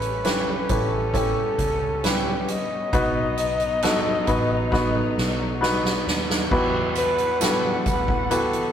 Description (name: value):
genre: pop ballad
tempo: 67 BPM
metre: 4/4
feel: straight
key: E minor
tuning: A4 = 440 Hz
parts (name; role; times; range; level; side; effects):
- mellow flugelhorn; melody; 0.0-8.7 s; G4 to D#5; -26 LUFS; left 1 dB; none
- warm baby grand piano; accompaniment; 0.0-8.7 s; B2 to B4; -25 LUFS; left 1 dB; none
- warm studio string section; sustained chords; 0.0-8.7 s; E3 to F#5; -32 LUFS; left 1 dB; none
- vintage muted fingered electric bass; bass; 0.0-8.5 s; A1 to E2; -31 LUFS; equal; none
- soft-mallet drum kit; drums; 0.0-8.7 s; crash cymbal, hi-hat, kick drum, snare drum; -25 LUFS; right 2 dB; none
- tambourine; percussion; 7.0-8.5 s; none; -34 LUFS; right 6 dB; none
room: moderate small room ambience, RT60 0.5 s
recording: rough rehearsal-room recording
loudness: -20 LUFS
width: side -9 dB against mid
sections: 0.0-6.5 A section; 6.5-8.7 B section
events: drum fill 4.7-6.5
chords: 0.0 A7; 2.9 B; 6.5 Emadd9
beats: 0.24 1.14 2.04 | 2.93 3.83 4.72 5.62 | 6.51 7.41 8.30